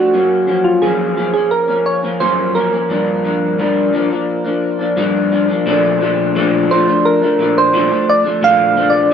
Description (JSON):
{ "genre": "indie pop", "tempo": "87 BPM", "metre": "4/4", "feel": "straight", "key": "Bb major", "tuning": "A4 = 440 Hz", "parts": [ { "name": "soft electric-piano-like synth keys", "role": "melody", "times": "0.0-9.1 s", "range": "F4 to F5", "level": "-14 LUFS", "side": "right 2 dB", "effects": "lush chorus" }, { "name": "electric guitar through a small old amp", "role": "accompaniment", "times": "0.0-9.1 s", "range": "Gb2 to D4", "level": "-15 LUFS", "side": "left 2 dB", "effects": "lush chorus, vibrato effect" } ], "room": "moderate studio reverb, RT60 0.6 s", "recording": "none", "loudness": "-12 LUFS", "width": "side -8 dB against mid", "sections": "0.0-5.7 A section; 5.7-9.1 B section", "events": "none", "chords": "0.1 Gbmaj7; 2.9 Gm7; 5.7 Bbmaj7" }